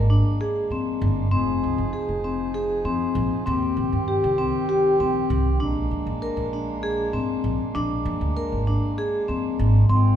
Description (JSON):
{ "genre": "contemporary instrumental, chamber music in an uneven meter", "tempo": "196 BPM (eighths)", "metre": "7/8", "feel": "straight", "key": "unclear", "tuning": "A4 = 439 Hz", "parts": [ { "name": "hand-pumped harmonium", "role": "sustained chords", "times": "0.0-10.2 s", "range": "Eb3 to Ab4", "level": "-30 LUFS", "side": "right 4 dB", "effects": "none" }, { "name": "vibraphone with soft mallets", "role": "arpeggios", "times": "0.0-10.1 s", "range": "C4 to Bb4", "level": "-24 LUFS", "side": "left 3 dB", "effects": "none" }, { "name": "upright bass", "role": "bass", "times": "0.0-10.2 s", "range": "F1 to Bb2", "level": "-23 LUFS", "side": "right 1 dB", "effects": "none" } ], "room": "wet recital hall reverb, RT60 1.8 s", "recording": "heard from further back in the room", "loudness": "-21 LUFS", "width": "side -10 dB against mid", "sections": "0.0-9.9 A section", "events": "none", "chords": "0.0 Bb7; 1.3 Fm7; 3.5 Eb6; 5.6 Bb7" }